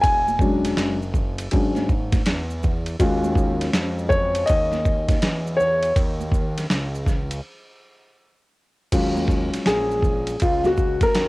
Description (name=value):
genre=hip hop, jazz-hop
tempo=81 BPM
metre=4/4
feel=swing 65% on 16ths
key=unclear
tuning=A4 = 440 Hz
part: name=dark grand piano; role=accompaniment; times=0.0-11.3 s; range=F#3 to G#5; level=-21 LUFS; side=left 1 dB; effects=none
part: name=fat analog bass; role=bass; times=0.0-11.3 s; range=E1 to F2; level=-28 LUFS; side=equal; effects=none
part: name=boom bap sampler-style drum kit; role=drums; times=0.0-11.3 s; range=crash cymbal, hi-hat, kick drum, ride cymbal, snare drum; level=-22 LUFS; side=equal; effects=cassette tape
part: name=maracas and congas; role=percussion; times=0.0-11.3 s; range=none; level=-35 LUFS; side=right 6 dB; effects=none
room=light reverb, digital ambience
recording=home recording on cassette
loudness=-19 LUFS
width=side -21 dB against mid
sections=0.0-8.9 A section; 8.9-11.3 B section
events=grand piano solo 0.0-8.9, 8.9-11.3; break 6.0-8.9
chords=0.0 E13; 3.0 Ebm11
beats=| 0.04 0.78 1.52 2.26 | 3.00 3.74 4.48 5.22 | 5.96 6.70 7.44 8.18 | 8.92 9.66 10.41 11.15